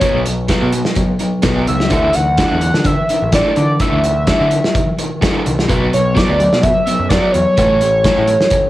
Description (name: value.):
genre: indie rock.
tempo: 127 BPM.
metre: 4/4.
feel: straight.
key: D major.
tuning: A4 = 438 Hz.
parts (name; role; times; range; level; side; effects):
overdriven synth lead; melody; 0.0-8.7 s; C#5 to F#5; -15 LUFS; equal; distortion, chorus, analog delay.
raw garage guitar; riff; 0.0-8.7 s; A2 to B3; -18 LUFS; equal; overdrive, tremolo, cassette tape.
loose indie drum kit; drums; 0.0-8.6 s; hi-hat, kick drum, snare drum; -18 LUFS; equal; cassette tape.
growling picked electric bass; bass; 0.1-8.4 s; A1 to D3; -18 LUFS; equal; overdrive.
room: light reverb.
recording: home recording on cassette.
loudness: -12 LUFS.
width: side -15 dB against mid.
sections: 0.0-8.7 A section.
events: none.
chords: 0.0 B5; 1.9 Dsus2; 5.7 Bm; 7.6 A.